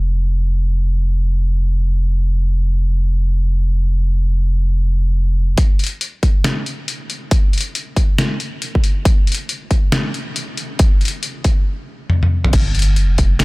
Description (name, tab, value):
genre	deep dubstep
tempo	138 BPM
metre	4/4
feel	swing 61% on 16ths, half-time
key	unclear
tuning	A4 = 440 Hz
part	soft dub sub bass	bass	0.0-13.4 s	F1 to Ab1	-15 LUFS	equal	high-pass filter
part	electronic kick drum	drums	5.6-13.3 s	none	-14 LUFS	equal	overdrive
part	trip hop sampler-style drum kit	drums	5.6-13.4 s	crash cymbal, handclaps, hi-hat, snare drum, toms	-20 LUFS	left 1 dB	none
room	little or no reverb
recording	none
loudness	-15 LUFS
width	side -25 dB against mid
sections	0.0-5.6 A section; 5.6-12.5 B section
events	build-up 5.6-12.5; drum fill 12.1-12.5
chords	none